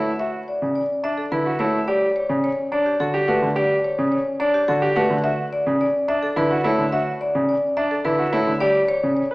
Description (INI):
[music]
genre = classical, minimalist pattern music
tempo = 107 BPM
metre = 3/4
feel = straight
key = D major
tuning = A4 = 436 Hz
[part]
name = marimba with medium hard mallets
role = melody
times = 0.0-9.3 s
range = G4 to E5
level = -22 LUFS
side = left 1 dB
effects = none
[part]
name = warm concert grand piano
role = accompaniment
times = 0.0-9.2 s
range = C#3 to A3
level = -25 LUFS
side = equal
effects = none
[part]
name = bright baby grand piano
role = arpeggios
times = 0.0-9.3 s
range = D4 to B4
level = -23 LUFS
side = right 1 dB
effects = none
[sound]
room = wet recital hall reverb, RT60 1.4 s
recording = heard from further back in the room, small speaker sound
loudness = -18 LUFS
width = side -21 dB against mid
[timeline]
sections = 0.0-9.3 A section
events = none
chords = 0.0 Dmaj9; 1.9 Gmaj7sus2; 5.2 Dmaj9; 8.6 A7sus4 (rootless)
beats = | 0.20 0.76 1.32 | 1.88 2.44 3.00 | 3.56 4.12 4.69 | 5.25 5.81 6.37 | 6.93 7.49 8.05 | 8.61 9.17